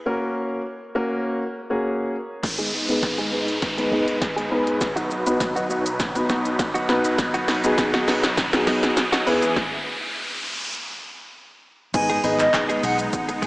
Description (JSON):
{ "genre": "dance-pop", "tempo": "101 BPM", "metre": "4/4", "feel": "straight", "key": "unclear", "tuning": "A4 = 440 Hz", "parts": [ { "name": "dark grand piano", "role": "accompaniment", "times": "0.1-13.3 s", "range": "A#3 to D#5", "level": "-24 LUFS", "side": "equal", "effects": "sidechain pumping, low-pass filter" }, { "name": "supersaw chords", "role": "sustained chords", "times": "2.4-13.5 s", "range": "E2 to B4", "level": "-28 LUFS", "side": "equal", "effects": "lush chorus, sidechain pumping, low-pass filter" }, { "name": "direct-recorded clean electric guitar", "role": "riff", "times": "2.4-13.5 s", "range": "F#3 to G#4", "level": "-29 LUFS", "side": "right 1 dB", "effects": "wide subtle chorus, low-pass filter" }, { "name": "punchy analog drum machine", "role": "drums", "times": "2.4-13.5 s", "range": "crash cymbal, handclaps, hi-hat, kick drum, shaker, snare drum", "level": "-25 LUFS", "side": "equal", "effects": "none" }, { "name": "riser, downlifter and impact", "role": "sound effects", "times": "2.4-13.5 s", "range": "none", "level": "-29 LUFS", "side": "equal", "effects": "none" }, { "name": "silver concert flute", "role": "melody", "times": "11.9-13.5 s", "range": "D#5 to G#5", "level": "-23 LUFS", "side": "equal", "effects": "sidechain pumping, analog delay" }, { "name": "vintage muted fingered electric bass", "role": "bass", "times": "11.9-13.5 s", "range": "G#1 to B1", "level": "-32 LUFS", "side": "equal", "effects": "sidechain pumping" } ], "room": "wet lush hall reverb, RT60 2.7 s", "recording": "dreamy mix soaked in reverb, small speaker sound", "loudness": "-20 LUFS", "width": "side -22 dB against mid", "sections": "0.0-2.4 A section; 2.4-11.9 B section; 11.9-13.5 C section", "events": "break 0.1-2.4; build-up 2.4-11.9; drum fill 2.4-9.6; riser 2.4-11.9; filter sweep 2.4-11.9; stop 9.6-11.9; drop 11.9-13.5; impact 11.9-13.5", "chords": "0.1 F#; 2.4 G#m; 4.8 B; 9.3 E; 11.9 G#m", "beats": "| 0.06 0.65 1.25 1.84 | 2.44 3.03 3.62 4.22 | 4.81 5.41 6.00 6.59 | 7.19 7.78 8.38 8.97 | 9.56 10.16 10.75 11.35 | 11.94 12.54 13.13" }